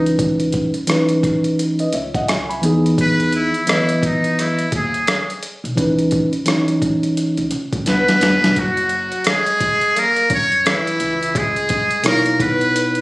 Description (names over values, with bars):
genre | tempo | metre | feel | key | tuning
hip hop, jazz-hop | 86 BPM | 4/4 | swing 61% on 16ths | C# dorian | A4 = 440 Hz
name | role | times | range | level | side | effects
trumpet with metal mute | melody | 0.0-13.0 s | D#4 to C#5 | -17 LUFS | equal | none
mellow tine electric piano | accompaniment | 0.0-7.5, 12.0-13.0 s | B2 to B5 | -17 LUFS | equal | none
upright bass | bass | 0.0-11.7 s | E1 to C#3 | -26 LUFS | equal | none
boom bap sampler-style drum kit | drums | 0.1-13.0 s | hi-hat, kick drum, rim click, snare drum | -21 LUFS | equal | none
breathy tenor saxophone | second line | 7.9-13.0 s | E3 to C#4 | -24 LUFS | equal | none
room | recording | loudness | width
moderate studio ambience, RT60 0.5 s | recorded on a phone in the room, studio reverb | -15 LUFS | side -21 dB against mid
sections
0.0-13.0 A section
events
drum fill 7.9-8.6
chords
0.0 C#m9; 2.6 Emaj7; 5.8 C#m9; 8.6 F#sus2; 11.0 C#m9